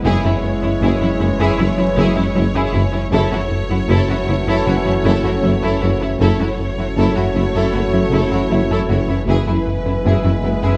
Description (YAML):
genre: cinematic, hybrid orchestral and electronic film score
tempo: 78 BPM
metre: 4/4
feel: straight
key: F# minor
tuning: A4 = 441 Hz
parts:
  - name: warm symphonic violin section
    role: second line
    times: 0.0-10.8 s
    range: B3 to A4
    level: -28 LUFS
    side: equal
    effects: none
  - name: clear symphonic viola section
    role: accompaniment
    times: 0.0-10.8 s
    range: E4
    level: -28 LUFS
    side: equal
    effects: none
  - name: ethereal airy pad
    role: sustained chords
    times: 0.0-10.8 s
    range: F#3 to B4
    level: -31 LUFS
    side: equal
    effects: none
  - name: warm French horn section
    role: sustained chords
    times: 0.0-10.8 s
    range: B3 to F#4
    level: -28 LUFS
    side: equal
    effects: none
  - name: warm trombone section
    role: sustained chords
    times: 0.0-10.8 s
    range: E3 to A3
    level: -28 LUFS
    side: equal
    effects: none
  - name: rubbery square bass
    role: riff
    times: 0.0-10.7 s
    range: F#2 to F#3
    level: -24 LUFS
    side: equal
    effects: none
  - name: warm concert grand piano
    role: texture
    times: 0.0-3.2, 8.5-10.8 s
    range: E4 to F#5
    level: -37 LUFS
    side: equal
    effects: none
  - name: rich symphonic violin section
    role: melody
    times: 0.1-10.8 s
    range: B4 to C#5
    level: -29 LUFS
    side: equal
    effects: none
  - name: dark tuba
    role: bass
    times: 0.1-10.5 s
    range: F#1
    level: -26 LUFS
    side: equal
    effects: none
  - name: punchy sub bass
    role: bass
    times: 0.1-10.8 s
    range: F#1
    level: -29 LUFS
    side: equal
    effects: none
  - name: rich symphonic cello section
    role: bass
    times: 0.1-10.7 s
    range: F#2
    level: -25 LUFS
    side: equal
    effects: none
  - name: rich symphonic double bass section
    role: bass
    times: 0.1-10.5 s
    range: F#1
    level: -26 LUFS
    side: equal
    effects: none
room: moderate scoring stage reverb, RT60 1.7 s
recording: worn, warbling old tape, cassette tape, warbly pitch drift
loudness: -17 LUFS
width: mono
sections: 0.0-10.8 A section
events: none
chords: 0.1 C#m/F#; 3.1 F#m7; 9.3 E/F#